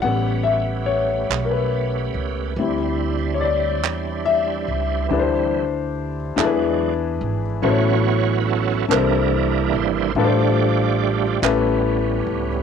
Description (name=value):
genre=slow gospel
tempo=47 BPM (dotted quarters)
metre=6/8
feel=straight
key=unclear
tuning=A4 = 439 Hz
part: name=warm concert grand piano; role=accompaniment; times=0.0-12.6 s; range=A2 to F#5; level=-21 LUFS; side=left 7 dB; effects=cassette tape
part: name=bright tonewheel organ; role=sustained chords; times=0.0-12.6 s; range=E3 to D5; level=-24 LUFS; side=right 12 dB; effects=fast rotary speaker, overdrive, chorus vibrato, cassette tape
part: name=upright bass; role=bass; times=0.0-12.6 s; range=G#1 to E2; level=-24 LUFS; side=right 3 dB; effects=tube saturation
part: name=group handclap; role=percussion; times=1.3-11.8 s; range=none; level=-23 LUFS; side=right 14 dB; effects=none
room=moderate studio reverb, RT60 0.6 s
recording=home recording on cassette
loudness=-18 LUFS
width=side -7 dB against mid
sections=0.0-5.1 A section; 5.1-7.6 B section; 7.6-12.6 C section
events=grand piano solo 0.0-5.1; tonewheel organ solo 5.1-7.6, 7.6-12.6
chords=0.0 A9; 2.6 D9sus4; 6.4 E7; 7.6 A6; 8.9 C13; 10.2 F69/A; 11.4 A9